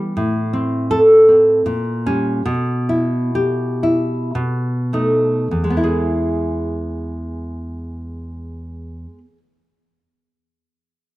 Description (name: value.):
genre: romantic piece for solo classical guitar.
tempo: 50-85 BPM.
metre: 3/4.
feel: rubato.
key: unclear.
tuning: A4 = 441 Hz.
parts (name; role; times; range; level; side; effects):
nylon-string guitar; solo; 0.0-9.4 s; E2 to A4; -16 LUFS; equal; none.
room: small room ambience.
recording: dry, close 1970s-style studio recording.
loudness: -15 LUFS.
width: side -17 dB against mid.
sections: 0.0-5.5 A section; 5.5-11.2 B section.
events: slowing down 0.0-5.5.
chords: 0.2 Am; 1.6 A#m6; 2.4 Em/B; 4.3 B7; 5.5 E.